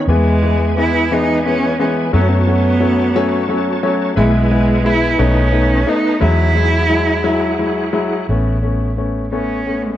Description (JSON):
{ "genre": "six-eight pop ballad", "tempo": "58 BPM (dotted quarters)", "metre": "6/8", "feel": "straight", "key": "E major", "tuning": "A4 = 439 Hz", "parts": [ { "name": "bright tonewheel organ", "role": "sustained chords", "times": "0.0-8.3 s", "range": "E3 to A5", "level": "-23 LUFS", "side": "equal", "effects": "chorus vibrato, fast rotary speaker" }, { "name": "rich cello", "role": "melody", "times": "0.1-10.0 s", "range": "G#3 to E4", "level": "-18 LUFS", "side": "right 2 dB", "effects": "tape echo" }, { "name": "clear baby grand piano", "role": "accompaniment", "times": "0.1-9.9 s", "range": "E3 to E4", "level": "-18 LUFS", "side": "left 3 dB", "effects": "none" }, { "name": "vintage muted fingered electric bass", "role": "bass", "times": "0.1-10.0 s", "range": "A1 to F#2", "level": "-17 LUFS", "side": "equal", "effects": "none" } ], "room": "light reverb, small room ambience", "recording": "dark, warm production", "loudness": "-13 LUFS", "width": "side -12 dB against mid", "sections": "0.0-8.3 A section; 8.3-10.0 B section", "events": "none", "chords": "0.1 E; 2.1 F#m; 4.2 E/B; 5.2 B7; 6.2 Eadd9; 8.3 Aadd9", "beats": "| 0.08 1.11 | 2.13 3.15 | 4.17 5.19 | 6.21 7.25 | 8.29 9.32" }